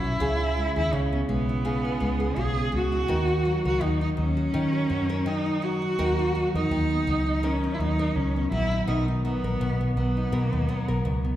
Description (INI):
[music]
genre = acoustic pop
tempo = 83 BPM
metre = 4/4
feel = swing 55% on 16ths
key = B major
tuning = A4 = 441 Hz
[part]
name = warm cello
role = melody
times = 0.0-11.4 s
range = B3 to G#4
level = -27 LUFS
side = right 1 dB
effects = none
[part]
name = nylon-string guitar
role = accompaniment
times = 0.0-11.4 s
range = B2 to A#4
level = -29 LUFS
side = equal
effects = none
[part]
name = vintage muted fingered electric bass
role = bass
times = 0.0-11.3 s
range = A#1 to D#3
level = -27 LUFS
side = equal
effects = none
[sound]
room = wet concert hall reverb, RT60 1.6 s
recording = recorded in a church or concert hall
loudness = -23 LUFS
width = side -12 dB against mid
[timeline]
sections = 0.0-11.4 A section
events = none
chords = 0.2 C#m7; 3.1 D#m; 6.0 Bmaj7